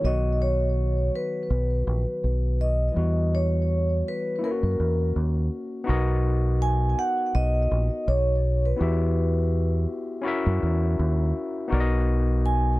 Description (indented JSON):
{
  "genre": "lovers rock reggae",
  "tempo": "82 BPM",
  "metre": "4/4",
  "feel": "swing 54% on 16ths",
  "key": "B major",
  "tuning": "A4 = 440 Hz",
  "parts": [
    { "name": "vibraphone with soft mallets", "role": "melody", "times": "0.0-12.8 s", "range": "A#4 to G#5", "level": "-28 LUFS", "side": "equal", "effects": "tape echo" },
    { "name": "overdriven tine electric piano", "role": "accompaniment", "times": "0.0-12.8 s", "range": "D#3 to E5", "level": "-29 LUFS", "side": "left 2 dB", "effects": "none" },
    { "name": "deep dub fingered electric bass", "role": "bass", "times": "0.0-12.8 s", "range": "A#1 to F#2", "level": "-23 LUFS", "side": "equal", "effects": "none" }
  ],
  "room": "little or no reverb",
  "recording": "dry, close 1970s-style studio recording",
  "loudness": "-22 LUFS",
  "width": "side -18 dB against mid",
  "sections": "0.0-5.9 A section; 5.9-12.8 B section",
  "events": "none",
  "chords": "0.0 B; 3.0 Emadd9; 4.4 F#7; 5.9 Bmaj7; 8.8 Emadd9; 10.2 F#7; 11.7 Bmaj7",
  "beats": "| 0.03 0.76 1.49 2.22 | 2.95 3.68 4.41 5.14 | 5.88 6.60 7.33 8.06 | 8.79 9.52 10.25 10.98 | 11.71 12.44"
}